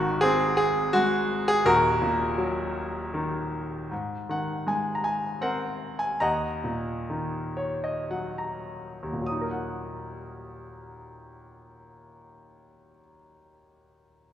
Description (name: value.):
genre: classical, lyrical solo piano.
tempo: 47-86 BPM.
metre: 3/4.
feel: rubato.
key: Eb dorian.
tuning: A4 = 439 Hz.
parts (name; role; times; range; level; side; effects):
bright grand piano; solo; 0.0-14.3 s; Eb1 to Eb6; -25 LUFS; equal; none.
room: wet scoring stage reverb, RT60 1.9 s.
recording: recorded in a church or concert hall.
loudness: -25 LUFS.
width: side -10 dB against mid.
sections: 0.0-3.9 A section; 3.9-9.3 B section; 9.3-13.0 C section.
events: slowing down 3.9-9.3; grand piano fill 7.1-9.3.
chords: 0.0 Ab; 1.6 Ebm; 3.9 Abadd9; 6.2 Ebm.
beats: 0.22 0.93 | 1.65 2.38 3.14 | 3.92 4.67 5.42 | 6.21 7.09 8.10 | 9.27 10.52 11.75.